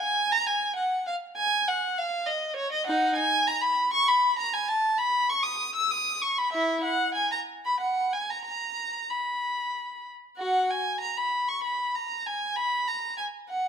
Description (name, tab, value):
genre	classical, baroque-style suite movement for unaccompanied violin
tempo	97 BPM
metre	3/4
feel	rubato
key	B major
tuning	A4 = 440 Hz
part	rich violin	solo	0.0-13.7 s	D#4 to E6	-24 LUFS	equal	none
room	moderate scoring stage reverb, RT60 1.6 s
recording	close, detailed microphones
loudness	-24 LUFS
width	side -7 dB against mid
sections	0.0-10.4 A section; 10.4-13.7 A section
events	none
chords	none